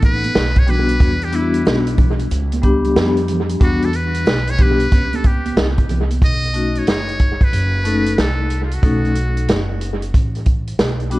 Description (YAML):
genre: hip hop, jazz-hop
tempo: 92 BPM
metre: 4/4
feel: swing 66% on 16ths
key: unclear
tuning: A4 = 439 Hz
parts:
  - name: trumpet with metal mute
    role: melody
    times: 0.0-9.7 s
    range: E4 to D#5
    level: -24 LUFS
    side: equal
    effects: analog delay
  - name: upright bass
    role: bass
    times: 0.0-11.2 s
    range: F#1 to F2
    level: -20 LUFS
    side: equal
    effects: none
  - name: vintage drum kit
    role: drums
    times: 0.0-11.2 s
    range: hi-hat, kick drum, snare drum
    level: -16 LUFS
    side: equal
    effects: analog delay
  - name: egg shaker and congas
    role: percussion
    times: 0.0-6.2 s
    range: none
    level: -28 LUFS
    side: right 4 dB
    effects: analog delay
  - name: vibraphone with medium hard mallets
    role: accompaniment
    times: 0.7-11.2 s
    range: G3 to A4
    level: -20 LUFS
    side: left 3 dB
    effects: analog delay
room: small room ambience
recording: echo-heavy mix, cassette tape, nothing above 10.9 kHz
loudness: -14 LUFS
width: side -18 dB against mid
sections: 0.0-6.2 A section; 6.2-11.2 B section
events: muted trumpet solo 0.0-6.2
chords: 0.3 B5; 1.0 Em9; 6.2 B7